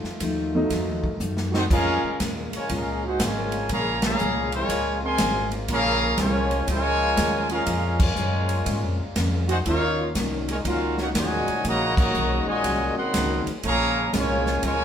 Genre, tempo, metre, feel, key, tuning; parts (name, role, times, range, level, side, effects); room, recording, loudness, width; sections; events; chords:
jazz, big band swing; 121 BPM; 4/4; swing 66% on 8ths; Bb minor; A4 = 440 Hz
picked steel-string acoustic guitar; accompaniment; 0.0-14.8 s; Bb2 to Gb4; -32 LUFS; left 2 dB
clear trombone section; sustained chords; 0.0-14.8 s; Bb2 to F4; -36 LUFS; left 2 dB
upright bass; bass; 0.0-14.8 s; Ab1 to Ab2; -28 LUFS; equal
swinging big-band drum kit; drums; 0.0-14.8 s; crash cymbal, hi-hat, kick drum, ride cymbal, snare drum; -28 LUFS; equal
warm baby grand piano; accompaniment; 0.5-1.2 s; Gb3 to Eb4; -25 LUFS; right 1 dB
bright trombone section; second line; 1.5-14.8 s; Bb2 to Gb4; -28 LUFS; right 1 dB
clear trumpet section; melody; 1.6-14.8 s; Db4 to C6; -25 LUFS; left 1 dB
wet studio reverb, RT60 0.6 s; band playing live in one room; -21 LUFS; side -8 dB against mid
0.0-1.7 A section; 1.7-14.8 B section
grand piano solo 0.0-1.7; drum fill 1.2-1.7; band accent 3.9, 7.9, 11.9
0.0 F7b9; 1.7 Bbm7; 9.7 Ebm7; 13.6 Bbm7